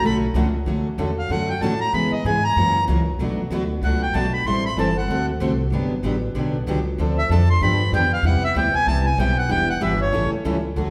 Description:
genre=acoustic string swing (jazz manouche)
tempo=190 BPM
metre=4/4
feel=swing 60% on 8ths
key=D major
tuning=A4 = 444 Hz
part: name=accordion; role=melody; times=0.0-10.3 s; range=C#5 to C6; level=-25 LUFS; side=equal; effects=none
part: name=picked steel-string acoustic guitar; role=accompaniment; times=0.0-10.9 s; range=B2 to A4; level=-28 LUFS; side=equal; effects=none
part: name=picked steel-string acoustic guitar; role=accompaniment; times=0.0-10.9 s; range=B2 to B4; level=-29 LUFS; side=equal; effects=none
part: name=upright bass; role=bass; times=0.0-10.9 s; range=E1 to C#3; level=-25 LUFS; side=equal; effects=none
room=wet recital hall reverb, RT60 1.6 s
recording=recorded in a church or concert hall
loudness=-21 LUFS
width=mono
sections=0.7-10.8 A section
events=accordion solo 0.0-10.8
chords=0.0 Dmaj7; 1.9 C#m7; 2.6 F#7; 3.2 Bm7; 4.5 Am7; 5.1 D7; 5.7 Gmaj7; 7.0 Dm7; 7.6 G7; 8.2 Cmaj7; 9.5 Em7; 10.1 A7

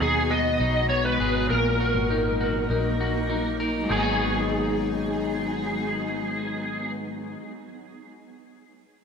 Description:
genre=dream pop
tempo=100 BPM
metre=4/4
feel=straight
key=G# minor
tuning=A4 = 441 Hz
part: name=overdriven slide guitar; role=melody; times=0.0-6.9 s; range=G#4 to D#5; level=-26 LUFS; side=equal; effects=ensemble chorus, ping-pong delay
part: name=shimmering ambient pad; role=sustained chords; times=0.0-6.9 s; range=D#3 to G#4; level=-32 LUFS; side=right 2 dB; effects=chorus, built-in reverb
part: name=electric guitar at the edge of break-up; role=arpeggios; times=0.0-7.5 s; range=G#2 to A#4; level=-28 LUFS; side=left 4 dB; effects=wide subtle chorus, ping-pong delay
part: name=vintage muted fingered electric bass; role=bass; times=0.0-6.9 s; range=G#1 to D#2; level=-30 LUFS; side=right 1 dB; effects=none
room=moderate plate reverb, RT60 1.5 s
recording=bright 1980s-style digital production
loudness=-22 LUFS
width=side -6 dB against mid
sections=0.0-3.9 A section; 3.9-6.3 B section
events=none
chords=0.0 G#m7; 1.5 D#m; 3.9 G#m7

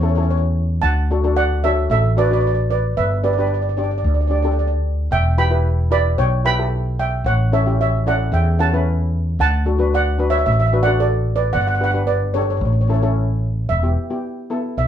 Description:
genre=calypso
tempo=112 BPM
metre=4/4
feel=straight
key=D major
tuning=A4 = 440 Hz
part: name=steel pan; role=melody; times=0.0-14.9 s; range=A4 to B5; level=-20 LUFS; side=right 2 dB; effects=none
part: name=steel pan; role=accompaniment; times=0.0-14.8 s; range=B3 to D5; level=-24 LUFS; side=left 4 dB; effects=none
part: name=mellow fretless electric bass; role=bass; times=0.0-14.9 s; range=E1 to E2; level=-18 LUFS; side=equal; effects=none
room=wet studio reverb, RT60 0.5 s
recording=band playing live in one room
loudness=-16 LUFS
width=side -9 dB against mid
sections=0.0-13.7 A section; 13.7-14.9 B section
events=none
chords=0.0 A; 0.8 D; 3.0 G; 5.1 Em; 7.3 A; 9.4 D; 11.5 G; 12.6 A; 13.7 Em

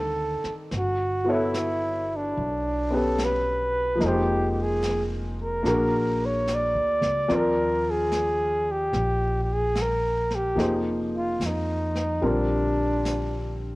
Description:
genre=jazz ballad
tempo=73 BPM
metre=4/4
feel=swing 67% on 8ths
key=Eb major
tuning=A4 = 440 Hz
part: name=warm flugelhorn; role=melody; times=0.0-13.6 s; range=D4 to D5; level=-26 LUFS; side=equal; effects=cassette tape
part: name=warm upright piano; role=accompaniment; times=0.0-13.8 s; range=D3 to D5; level=-27 LUFS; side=left 1 dB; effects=cassette tape
part: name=upright bass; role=bass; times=0.0-13.8 s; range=F1 to F2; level=-30 LUFS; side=equal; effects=none
part: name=jazz brush drum kit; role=drums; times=0.4-13.8 s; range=brushed snare drum, hi-hat, snare drum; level=-37 LUFS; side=equal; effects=cassette tape
room=light reverb, small room ambience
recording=home recording on cassette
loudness=-22 LUFS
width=side -21 dB against mid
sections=0.0-13.8 A section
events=none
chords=0.0 D5; 0.7 Gmaj9; 4.0 Fm7; 5.6 Bb7alt; 7.3 Ebmaj9; 10.6 Fm7; 12.2 Bb

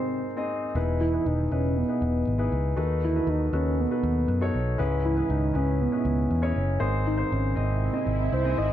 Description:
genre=piano-driven pop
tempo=119 BPM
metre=4/4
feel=straight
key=E major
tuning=A4 = 437 Hz
part: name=soft octave-layered synth lead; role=melody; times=0.0-8.7 s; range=B3 to D#5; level=-28 LUFS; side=right 2 dB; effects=chorus
part: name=warm concert grand piano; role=accompaniment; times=0.0-8.7 s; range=G#2 to D#5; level=-29 LUFS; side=left 3 dB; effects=none
part: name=picked electric bass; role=bass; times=0.8-8.7 s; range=E1 to F#2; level=-26 LUFS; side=equal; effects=none
part: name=swell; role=sound effects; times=7.4-8.7 s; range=none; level=-36 LUFS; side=left 2 dB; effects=none
room=moderate large studio reverb, RT60 1.1 s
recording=dark, warm production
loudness=-23 LUFS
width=side -11 dB against mid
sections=0.0-8.7 A section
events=swell 7.4-8.7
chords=0.0 G#; 0.8 Emaj7; 2.8 B7/D#; 4.8 C#m7; 6.8 G#

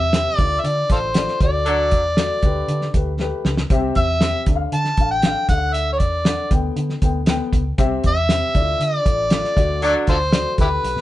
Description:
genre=uptempo 1960s-style soul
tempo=118 BPM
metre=4/4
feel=straight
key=unclear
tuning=A4 = 440 Hz
part: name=overdriven harmonica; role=melody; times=0.0-11.0 s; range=E4 to A5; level=-20 LUFS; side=equal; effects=none
part: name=dark upright piano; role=accompaniment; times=0.0-11.0 s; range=C3 to G5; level=-26 LUFS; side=left 4 dB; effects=none
part: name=vintage muted fingered electric bass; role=bass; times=0.0-11.0 s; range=A1 to D3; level=-24 LUFS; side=equal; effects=none
part: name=cloth-damped thuddy drum kit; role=drums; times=0.1-11.0 s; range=hi-hat, kick drum, snare drum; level=-19 LUFS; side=equal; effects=none
part: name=mellow horn section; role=second line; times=1.6-2.0, 9.8-10.2 s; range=F#3 to A4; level=-21 LUFS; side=right 1 dB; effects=none
room=light reverb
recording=band playing live in one room, nothing above 10.4 kHz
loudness=-16 LUFS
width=side -15 dB against mid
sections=0.0-11.0 A section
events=band accent 1.7-3.7, 9.8-11.0; drum fill 3.2-3.7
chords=0.4 Dm; 1.4 D; 2.4 Gadd9/D; 3.7 C; 4.5 Dm; 5.5 D; 6.5 Gadd9/D; 7.8 C; 8.5 Dm; 9.6 D

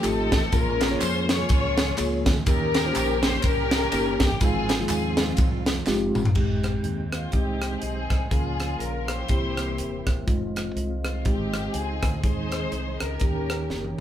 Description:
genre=uptempo gospel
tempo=123 BPM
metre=4/4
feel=swing 59% on 8ths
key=Ab major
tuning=A4 = 444 Hz
part: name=warm studio string section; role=melody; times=0.0-14.0 s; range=C4 to Db5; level=-29 LUFS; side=left 3 dB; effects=none
part: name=mellow tine electric piano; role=accompaniment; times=0.0-13.9 s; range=Ab2 to Db5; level=-29 LUFS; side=equal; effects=medium stereo tremolo
part: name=mellow tonewheel organ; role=sustained chords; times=0.0-14.0 s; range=Eb3 to G5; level=-34 LUFS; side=right 2 dB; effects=chorus vibrato, slow rotary speaker
part: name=modern bright fingered electric bass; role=bass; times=0.0-13.9 s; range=Eb1 to F2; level=-31 LUFS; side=equal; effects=none
part: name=crisp fusion drum kit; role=drums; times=0.0-14.0 s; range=crash cymbal, hi-hat, kick drum, ride cymbal, rim click, snare drum, toms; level=-25 LUFS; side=equal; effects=none
part: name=handclaps and tambourine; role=percussion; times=0.0-6.3 s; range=none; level=-37 LUFS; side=right 2 dB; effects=none
part: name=mellow French horn section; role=sustained chords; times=6.4-14.0 s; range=Ab3 to F5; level=-40 LUFS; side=left 2 dB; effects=none
room=moderate studio reverb, RT60 0.5 s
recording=band playing live in one room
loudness=-22 LUFS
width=side -10 dB against mid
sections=0.0-6.4 A section; 6.4-14.0 B section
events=drum fill 5.9-6.4, 13.7-14.0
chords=0.0 F7; 0.5 Bbm7; 2.5 Eb7; 4.4 Ab6; 6.4 Abmaj7; 8.3 Db6; 9.3 C7; 10.3 Fm7; 12.2 Ab/Eb; 13.2 Eb7

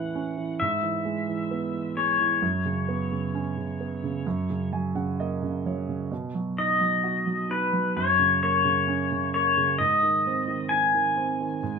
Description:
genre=acoustic folk-pop ballad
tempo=65 BPM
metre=4/4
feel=straight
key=unclear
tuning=A4 = 440 Hz
part: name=pedal steel guitar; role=melody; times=0.0-11.8 s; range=B4 to G#5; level=-24 LUFS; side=left 4 dB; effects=none
part: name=warm grand piano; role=accompaniment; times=0.0-11.8 s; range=F#2 to G#5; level=-28 LUFS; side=right 4 dB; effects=none
room=moderate studio ambience, RT60 0.5 s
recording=minimal, uncompressed stereo recording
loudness=-23 LUFS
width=side -5 dB against mid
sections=0.0-11.8 A section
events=none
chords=0.0 A; 0.6 E/G#; 2.4 F#sus4; 4.3 F#; 6.1 B; 8.0 F#; 9.8 G#

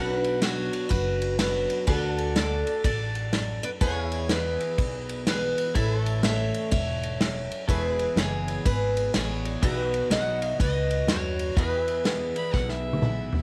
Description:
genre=honky-tonk and classic country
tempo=124 BPM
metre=4/4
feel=swing 64% on 8ths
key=unclear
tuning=A4 = 439 Hz
part: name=picked steel-string acoustic guitar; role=melody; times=0.0-13.0 s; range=E4 to F#5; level=-31 LUFS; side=equal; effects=tape echo
part: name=picked steel-string acoustic guitar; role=accompaniment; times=0.0-13.4 s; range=E2 to F#4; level=-37 LUFS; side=equal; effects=cassette tape
part: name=warm grand piano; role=accompaniment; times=0.0-13.4 s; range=D4 to D5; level=-45 LUFS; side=equal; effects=none
part: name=pedal steel guitar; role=sustained chords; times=0.0-13.4 s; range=D4 to F#5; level=-42 LUFS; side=equal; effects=cassette tape
part: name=upright bass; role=bass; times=0.0-13.3 s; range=E1 to E2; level=-33 LUFS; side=equal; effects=none
part: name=unplugged drum kit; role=drums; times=0.2-13.4 s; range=kick drum, ride cymbal, snare drum, toms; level=-31 LUFS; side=equal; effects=cassette tape
part: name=clear fiddle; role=second line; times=12.4-13.4 s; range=E5 to B5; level=-37 LUFS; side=equal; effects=cassette tape
room=light reverb, small room reverb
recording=home recording on cassette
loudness=-26 LUFS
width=mono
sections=0.0-13.4 A section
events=drum fill 12.5-13.4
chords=0.0 Bm; 1.9 D; 3.8 E; 5.8 A; 7.7 E; 9.6 B; 11.6 E

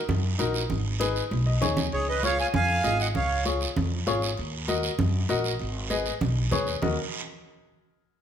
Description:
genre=latin, cumbia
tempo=196 BPM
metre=4/4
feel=straight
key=Eb minor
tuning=A4 = 441 Hz
part: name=upright bass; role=bass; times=0.1-7.0 s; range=Ab1 to Gb2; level=-28 LUFS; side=equal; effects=none
part: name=congas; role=percussion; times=0.1-6.9 s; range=none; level=-32 LUFS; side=right 2 dB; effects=none
part: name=guiro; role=percussion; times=0.1-6.9 s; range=none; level=-34 LUFS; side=right 6 dB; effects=none
part: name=warm upright piano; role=accompaniment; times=0.4-7.0 s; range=Eb4 to Ab5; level=-30 LUFS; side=left 4 dB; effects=none
part: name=accordion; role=melody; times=1.9-3.4 s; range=Ab4 to Ab5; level=-25 LUFS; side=right 2 dB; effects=slapback echo
room=moderate large studio reverb, RT60 1.3 s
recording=none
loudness=-24 LUFS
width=side -9 dB against mid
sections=0.0-6.8 A section; 6.8-8.0 B section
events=drum fill 1.0-1.9; upright piano fill 1.3-1.9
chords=0.0 Ebm; 0.7 Abm; 1.9 Db; 4.4 Ebm; 5.6 Abm; 6.8 Ebm

